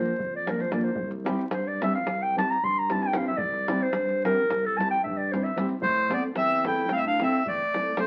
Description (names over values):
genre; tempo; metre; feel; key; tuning
balkan folk, Balkan wedding band; 224 BPM (eighths); 9/8; straight; C mixolydian; A4 = 440 Hz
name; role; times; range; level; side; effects
mellow clarinet; second line; 0.0-8.1 s; A3 to C6; -30 LUFS; equal; none
nylon-string guitar; accompaniment; 0.0-8.1 s; F3 to A4; -33 LUFS; equal; none
mellow tuba; bass; 0.2-7.6 s; C2 to A2; -38 LUFS; equal; none
davul; percussion; 0.2-8.1 s; none; -37 LUFS; equal; none
accordion; melody; 5.8-8.1 s; C5 to G5; -27 LUFS; equal; none
room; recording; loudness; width
moderate studio reverb, RT60 1.0 s; very old 78 rpm record, vinyl crackle; -26 LUFS; mono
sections
0.0-5.8 A section; 5.8-8.1 B section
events
clarinet solo 0.0-5.8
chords
0.0 Bb; 1.0 C; 5.8 Am